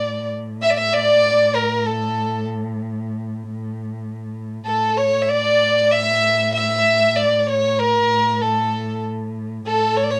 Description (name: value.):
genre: Arabic maqam ensemble.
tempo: 96 BPM.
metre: 4/4.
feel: straight.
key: A maqam hijaz.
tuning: A4 = 441 Hz.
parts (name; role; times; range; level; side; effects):
warm violin; melody; 0.0-10.2 s; A4 to E5; -20 LUFS; equal; cassette tape.
rich fiddle; second line; 0.0-10.2 s; A4 to E5; -24 LUFS; equal; cassette tape.
dark cello; drone; 0.0-10.2 s; A2; -29 LUFS; equal; cassette tape.
room: wet studio ambience, RT60 0.5 s.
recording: home recording on cassette.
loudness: -19 LUFS.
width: mono.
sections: 0.0-10.2 A section.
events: none.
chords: none.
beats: 0.31 0.93 1.55 | 2.18 2.80 3.42 4.05 | 4.67 5.29 5.92 6.54 | 7.17 7.79 8.41 9.04 | 9.66.